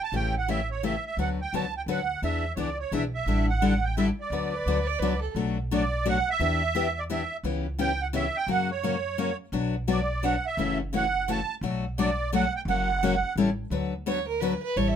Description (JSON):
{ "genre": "acoustic string swing (jazz manouche)", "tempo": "172 BPM", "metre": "3/4", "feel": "swing 62% on 8ths", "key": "D major, B minor from 5.4 s", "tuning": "A4 = 440 Hz", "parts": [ { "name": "musette accordion", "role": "melody", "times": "0.0-13.3 s", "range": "C#5 to A5", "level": "-28 LUFS", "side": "right 5 dB", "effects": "none" }, { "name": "picked steel-string acoustic guitar", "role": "accompaniment", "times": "0.1-15.0 s", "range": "B2 to B4", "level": "-27 LUFS", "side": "left 5 dB", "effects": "none" }, { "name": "upright bass", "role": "bass", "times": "0.1-15.0 s", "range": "F#1 to F#2", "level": "-31 LUFS", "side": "right 1 dB", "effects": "none" }, { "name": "rich violin", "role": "second line", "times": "4.5-5.3, 14.1-15.0 s", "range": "A4 to E5", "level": "-30 LUFS", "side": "right 4 dB", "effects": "none" } ], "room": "moderate club reverb, RT60 0.5 s", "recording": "minimal, uncompressed stereo recording", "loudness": "-25 LUFS", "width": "side -8 dB against mid", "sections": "0.0-5.4 A section; 5.4-13.7 B section; 13.7-15.0 C section", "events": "violin solo 13.7-15.0", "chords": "0.1 A7; 1.2 D6; 2.2 E7; 3.3 A7sus4; 4.3 D6; 5.4 Bm7; 6.4 Em7; 7.4 C#m7b5; 8.5 F#; 9.5 Bm; 10.6 F#m7; 11.6 Bm7; 12.7 F#; 13.4 A7; 13.7 D6" }